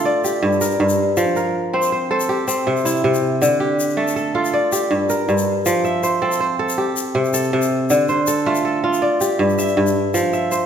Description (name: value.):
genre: west african traditional, West African string and xylophone music.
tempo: 107 BPM (dotted quarters).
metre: 12/8.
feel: straight.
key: F major.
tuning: A4 = 440 Hz.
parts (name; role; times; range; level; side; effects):
kora; arpeggios; 0.0-10.7 s; G2 to E5; -16 LUFS; equal; none.
tube shaker; percussion; 0.2-10.6 s; none; -29 LUFS; left 6 dB; none.
room: wet recital hall reverb, RT60 1.5 s.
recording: none.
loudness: -16 LUFS.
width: side -8 dB against mid.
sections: 0.0-5.7 A section; 5.7-10.7 B section.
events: none.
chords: 0.1 Gm; 1.2 F; 2.3 C; 3.4 Dm; 4.5 Gm; 5.7 F; 6.8 C5; 7.9 Dm; 9.0 G5; 10.1 F.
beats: 0.06 0.62 | 1.18 1.74 2.29 2.85 | 3.41 3.97 4.53 5.09 | 5.66 6.22 6.78 7.34 | 7.90 8.46 9.02 9.58 | 10.14.